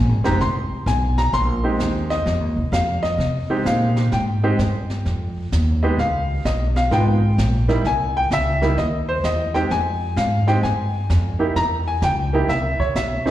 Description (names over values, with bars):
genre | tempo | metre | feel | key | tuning
jazz piano trio | 129 BPM | 4/4 | swing 66% on 8ths | F minor | A4 = 441 Hz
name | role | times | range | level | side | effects
clear baby grand piano | melody | 0.0-13.3 s | Bb2 to C6 | -21 LUFS | equal | slapback echo
upright bass | bass | 0.0-13.3 s | F1 to C3 | -20 LUFS | equal | none
jazz brush drum kit | drums | 0.2-13.3 s | brushed snare drum, hi-hat, kick drum, snare drum | -30 LUFS | right 1 dB | slapback echo
room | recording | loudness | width
light reverb | live gig heard through the venue's PA, recital hall reverb | -18 LUFS | side -13 dB against mid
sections
0.0-13.3 A section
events
none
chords
0.0 Fm9; 6.0 Db7; 7.8 C(#9); 9.7 Fmadd9; 11.6 C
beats
| 0.41 0.87 1.34 1.80 | 2.27 2.73 3.20 3.66 | 4.13 4.59 5.06 5.52 | 5.99 6.45 6.92 7.38 | 7.85 8.31 8.78 9.24 | 9.71 10.17 10.64 11.10 | 11.57 12.03 12.50 12.96